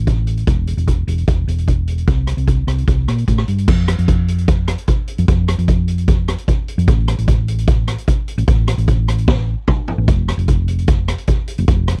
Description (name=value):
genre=calypso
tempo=150 BPM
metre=4/4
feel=straight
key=unclear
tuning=A4 = 441 Hz
part: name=hollow-body short-scale fingered electric bass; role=bass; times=0.0-12.0 s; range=E1 to Bb2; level=-19 LUFS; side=equal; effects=none
part: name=street-band drum kit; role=drums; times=0.1-12.0 s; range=crash cymbal, hi-hat, kick drum, rim click, snare drum, toms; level=-19 LUFS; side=equal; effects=none
room=little or no reverb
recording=dry, close 1970s-style studio recording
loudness=-17 LUFS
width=mono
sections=0.0-3.7 A section; 3.7-12.0 B section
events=drum fill 9.3-10.1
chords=none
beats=0.07 | 0.47 0.87 1.27 1.67 | 2.07 2.48 2.88 3.28 | 3.68 4.08 4.48 4.88 | 5.28 5.68 6.08 6.48 | 6.88 7.28 7.68 8.08 | 8.48 8.88 9.28 9.68 | 10.08 10.48 10.89 11.29 | 11.69